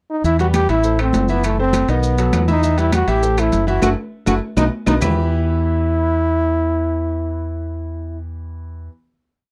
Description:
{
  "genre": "latin, salsa",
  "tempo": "201 BPM",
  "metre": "4/4",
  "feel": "straight",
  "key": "E harmonic minor",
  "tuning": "A4 = 439 Hz",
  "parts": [
    { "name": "bright trombone", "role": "melody", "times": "0.1-8.2 s", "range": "A3 to G4", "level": "-22 LUFS", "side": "equal", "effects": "none" },
    { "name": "bright concert grand piano", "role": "accompaniment", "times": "0.2-8.9 s", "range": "D#3 to E5", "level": "-28 LUFS", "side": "equal", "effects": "none" },
    { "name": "deep dub fingered electric bass", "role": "bass", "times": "0.2-8.9 s", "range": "F#1 to E2", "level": "-22 LUFS", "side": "equal", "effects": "none" },
    { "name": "congas", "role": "percussion", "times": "0.2-5.1 s", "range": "none", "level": "-26 LUFS", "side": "equal", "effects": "none" },
    { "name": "maracas", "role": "percussion", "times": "0.2-5.1 s", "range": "none", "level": "-36 LUFS", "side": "equal", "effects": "none" },
    { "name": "timbales", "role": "percussion", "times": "0.4-5.1 s", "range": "none", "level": "-29 LUFS", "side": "equal", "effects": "none" },
    { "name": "claves", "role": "percussion", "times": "0.5-5.1 s", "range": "none", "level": "-35 LUFS", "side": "equal", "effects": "none" }
  ],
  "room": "light reverb",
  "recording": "dry, close 1970s-style studio recording",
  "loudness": "-18 LUFS",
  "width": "mono",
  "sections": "0.0-0.2 pickup bar; 0.2-5.0 montuno (vamp); 5.0-7.4 final chord",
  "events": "band accent 3.8-5.0; drum fill 4.6-5.0",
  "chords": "0.2 Em; 0.8 Am; 1.4 F#m7b5; 2.0 B7; 2.6 Em; 3.2 Am; 3.8 F#m7; 4.4 B; 5.0 Em"
}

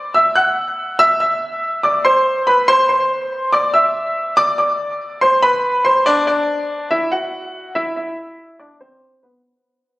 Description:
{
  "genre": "hip hop",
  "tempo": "142 BPM",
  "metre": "4/4",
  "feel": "half-time",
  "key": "unclear",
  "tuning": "A4 = 441 Hz",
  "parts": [
    { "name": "clear grand piano", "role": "solo", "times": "0.0-9.4 s", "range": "B3 to F#6", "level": "-14 LUFS", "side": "equal", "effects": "ping-pong delay" }
  ],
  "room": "moderate lush hall reverb, RT60 2.6 s",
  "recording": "recorded on a phone in the room, club reverb, compression, low-pass filter",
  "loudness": "-14 LUFS",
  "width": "side -18 dB against mid",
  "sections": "0.0-6.1 A section; 6.1-9.4 B section",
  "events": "fade-out 6.1-9.4; filter sweep 6.1-9.4",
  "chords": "0.0 Dadd9; 1.0 E5; 2.7 C; 4.4 Bm; 6.1 Dadd9; 7.8 E5"
}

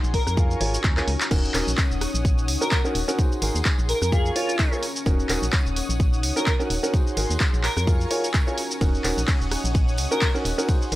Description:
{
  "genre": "piano house",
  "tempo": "128 BPM",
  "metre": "4/4",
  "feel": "swing 55% on 16ths",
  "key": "Eb dorian",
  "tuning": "A4 = 440 Hz",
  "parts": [
    { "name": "analog string pad", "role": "sustained chords", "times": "0.0-11.0 s", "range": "Ab4 to Eb6", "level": "-35 LUFS", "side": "equal", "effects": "ensemble chorus, sidechain pumping" },
    { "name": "organ-like FM bass", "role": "bass", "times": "0.0-11.0 s", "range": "Eb1 to F2", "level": "-26 LUFS", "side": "equal", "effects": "sidechain pumping" },
    { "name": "punchy analog drum machine", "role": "drums", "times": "0.0-11.0 s", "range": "crash cymbal, handclaps, hi-hat, ride cymbal, rim click, shaker", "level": "-27 LUFS", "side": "equal", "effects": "none" },
    { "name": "deep dark ambient pad", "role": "texture", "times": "0.0-11.0 s", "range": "Db4 to Ab5", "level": "-34 LUFS", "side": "left 2 dB", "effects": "chorus, built-in reverb, sidechain pumping" },
    { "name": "airy dreamy lead", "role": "melody", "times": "0.1-10.3 s", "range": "F4 to Bb4", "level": "-29 LUFS", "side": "equal", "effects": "chorus" },
    { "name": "electronic kick drum", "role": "drums", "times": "0.1-10.8 s", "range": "none", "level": "-22 LUFS", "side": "equal", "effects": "none" },
    { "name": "clear upright piano", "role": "riff", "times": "0.4-11.0 s", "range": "Db4 to F5", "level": "-28 LUFS", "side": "right 1 dB", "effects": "sidechain pumping" },
    { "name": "tambourine", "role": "percussion", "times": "1.3-11.0 s", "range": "none", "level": "-40 LUFS", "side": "left 2 dB", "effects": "none" }
  ],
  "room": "digital ambience",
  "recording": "dry, gritty hardware recording, transformer saturation",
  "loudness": "-20 LUFS",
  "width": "side -16 dB against mid",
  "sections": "0.0-11.0 A section",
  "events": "drum fill 1.0-1.3",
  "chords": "0.1 Bbm7; 1.3 Ebm7; 3.2 Ab7; 3.9 Bbm7; 5.1 Ebm7; 6.9 Ab7; 7.6 Bbm7; 8.8 Ebm7"
}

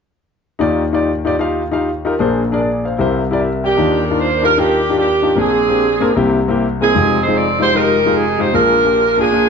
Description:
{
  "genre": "gospel",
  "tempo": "151 BPM",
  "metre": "4/4",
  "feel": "swing 64% on 8ths",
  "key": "Eb major",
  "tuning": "A4 = 440 Hz",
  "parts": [
    { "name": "warm grand piano", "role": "accompaniment", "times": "0.6-9.5 s", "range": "F1 to G5", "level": "-15 LUFS", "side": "left 3 dB", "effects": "none" },
    { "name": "warm saxophone section", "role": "melody", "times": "3.6-9.5 s", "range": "Bb3 to D5", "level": "-14 LUFS", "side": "right 2 dB", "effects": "none" }
  ],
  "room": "moderate large studio reverb, RT60 1.1 s",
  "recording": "dark, warm production, nothing above 7.5 kHz",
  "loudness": "-13 LUFS",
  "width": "side -6 dB against mid",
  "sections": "0.6-3.8 A section; 3.8-9.5 B section",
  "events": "none",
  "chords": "0.6 Ebmaj9; 2.2 Bb9; 3.0 C7; 3.8 Ebmaj9; 5.4 Bb9; 6.2 C7; 7.0 Fm9; 8.5 Bb7"
}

